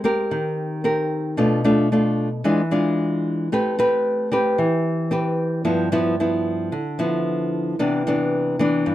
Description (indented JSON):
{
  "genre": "bossa nova",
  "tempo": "112 BPM",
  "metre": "4/4",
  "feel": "straight",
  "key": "unclear",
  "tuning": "A4 = 439 Hz",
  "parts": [
    { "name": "nylon-string guitar", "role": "solo", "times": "0.0-8.9 s", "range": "G2 to B4", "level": "-19 LUFS", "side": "equal", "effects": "none" }
  ],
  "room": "light reverb",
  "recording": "dark, warm production",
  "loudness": "-19 LUFS",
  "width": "side -14 dB against mid",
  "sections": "0.0-8.9 A section",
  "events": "none",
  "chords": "0.0 Abmaj9; 1.4 Bm7b5; 2.4 E7b9; 3.5 Am9; 5.7 G6; 7.8 Cmaj9"
}